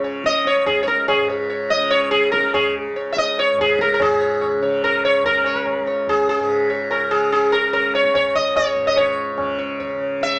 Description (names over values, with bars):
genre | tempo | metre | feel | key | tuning
indian classical, Hindustani | 144 BPM | 3/4 | straight | unclear | A4 = 440 Hz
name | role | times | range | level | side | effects
sitar | melody | 0.0-10.4 s | G#4 to E5 | -16 LUFS | equal | none
tanpura | drone | 0.0-10.4 s | C#2 to C#3 | -27 LUFS | equal | none
tabla | percussion | 0.0-10.4 s | none | -29 LUFS | equal | none
room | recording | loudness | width
wet studio reverb, RT60 0.6 s | band playing live in one room, small speaker sound | -16 LUFS | side -37 dB against mid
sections
0.0-4.0 A section; 4.0-10.4 B section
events
none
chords
none